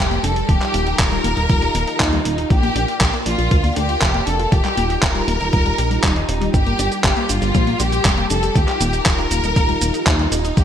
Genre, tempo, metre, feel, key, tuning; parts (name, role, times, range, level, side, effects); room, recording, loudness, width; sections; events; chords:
italo disco; 119 BPM; 4/4; straight; A4 = 440 Hz
warm studio violin section; melody; 0.0-10.6 s; Eb4 to Bb4; -22 LUFS; left 1 dB; ping-pong delay
string machine, full ensemble; sustained chords; 0.0-10.6 s; G3 to F5; -26 LUFS; equal; phaser, ensemble chorus
analog pluck; arpeggios; 0.0-10.6 s; F3 to G4; -27 LUFS; left 4 dB; chorus, ping-pong delay
chorused synth bass; bass; 0.0-10.6 s; Eb1 to Eb2; -21 LUFS; equal; tube saturation
dusty soul sampler-style drum kit; drums; 0.1-10.6 s; cabasa, handclaps, hi-hat; -23 LUFS; right 1 dB; studio reverb, gated reverb
electronic kick drum; drums; 0.5-10.6 s; -18 LUFS; equal; studio reverb
light reverb; bright 1980s-style digital production; -15 LUFS; side -9 dB against mid
0.0-10.6 A section
0.5 Ebadd9; 2.5 Bb; 4.5 Ebadd9; 6.5 Gm; 8.6 Ebadd9